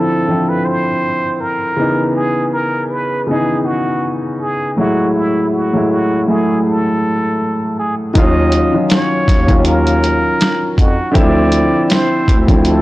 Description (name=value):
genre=lo-fi hip hop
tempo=80 BPM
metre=4/4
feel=swing 55% on 16ths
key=unclear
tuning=A4 = 440 Hz
part: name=trumpet with plunger mute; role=melody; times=0.0-12.8 s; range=Fb4 to Eb5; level=-19 LUFS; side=right 1 dB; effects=low-pass filter, analog delay
part: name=warm upright piano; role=accompaniment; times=0.0-12.8 s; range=A2 to F4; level=-15 LUFS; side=equal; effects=cassette tape, low-pass filter
part: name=mellow bass clarinet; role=bass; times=8.2-12.8 s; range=D2 to F2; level=-16 LUFS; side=equal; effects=transformer saturation
part: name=lo-fi sampler-style drum kit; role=drums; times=8.2-12.8 s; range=hi-hat, kick drum, snare drum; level=-14 LUFS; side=equal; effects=vintage 12-bit sampler grit
room=studio ambience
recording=dry, gritty hardware recording, transformer saturation, cassette tape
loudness=-12 LUFS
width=side -17 dB against mid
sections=0.0-8.2 A section; 8.2-12.8 B section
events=none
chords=0.0 Dm9; 1.8 Dbm9; 4.8 Gbm9; 8.2 Ebm9; 11.2 Dm9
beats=0.65 1.40 | 2.15 2.90 3.65 4.40 | 5.15 5.90 6.65 7.40 | 8.15 8.90 9.65 10.40 | 11.15 11.90 12.65